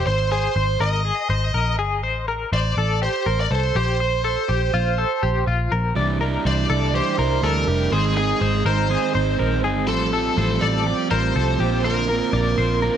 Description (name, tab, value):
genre	indie pop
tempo	122 BPM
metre	4/4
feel	straight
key	unclear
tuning	A4 = 439 Hz
part	bluesy overdriven lead guitar	melody	0.0-13.0 s	Ab4 to Eb5	-24 LUFS	right 3 dB	distortion
part	twelve-string electric guitar	arpeggios	0.0-13.0 s	F4 to D5	-25 LUFS	left 6 dB	tremolo
part	vintage muted picked electric bass	bass	0.0-12.9 s	F1 to D2	-22 LUFS	equal	none
part	overdriven electric guitar	accompaniment	6.0-13.0 s	Ab2 to F4	-24 LUFS	right 7 dB	none
room	light reverb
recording	none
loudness	-18 LUFS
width	side -9 dB against mid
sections	0.0-13.0 A section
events	none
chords	0.1 Ab; 2.0 Amadd11; 3.8 Bbsus2; 6.0 Cadd9; 7.9 Ab; 9.9 Fadd9/A; 11.6 Bbadd9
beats	| 0.07 0.56 1.05 1.55 | 2.04 2.53 3.02 3.51 | 4.00 4.49 4.98 5.47 | 5.96 6.45 6.94 7.43 | 7.92 8.41 8.90 9.39 | 9.88 10.37 10.86 11.35 | 11.84 12.33 12.82